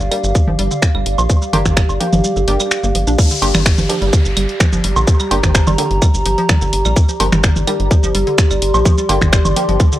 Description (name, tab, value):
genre	minimal techno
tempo	127 BPM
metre	4/4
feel	straight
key	G minor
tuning	A4 = 440 Hz
part	rubbery square bass	bass	0.0-9.8 s	G1 to Bb1	-18 LUFS	equal	tube saturation, sidechain pumping
part	garage drum kit	drums	0.0-10.0 s	finger snaps, hi-hat, shaker	-20 LUFS	equal	none
part	warbly tape-like pad	texture	0.0-10.0 s	G4 to C6	-20 LUFS	equal	chorus, built-in reverb, sidechain pumping
part	hollow square pluck	riff	0.1-10.0 s	D3 to D4	-24 LUFS	right 1 dB	lush chorus, sidechain pumping, analog delay
part	filtered dub chord stab	stabs	0.1-9.6 s	Bb3 to G4	-24 LUFS	right 1 dB	lush chorus, analog delay
part	electronic claves, toms and woodblock	percussion	0.1-9.5 s	none	-20 LUFS	right 2 dB	analog delay
part	electronic kick drum	drums	0.3-9.9 s	none	-13 LUFS	equal	none
part	downlifter	sound effects	3.2-7.0 s	none	-26 LUFS	left 2 dB	none
room	digital ambience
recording	dry, gritty hardware recording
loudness	-12 LUFS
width	side -14 dB against mid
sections	0.0-3.2 A section; 3.2-10.0 B section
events	kick drops out 2.2-3.2; drop 3.2-10.0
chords	0.0 Gm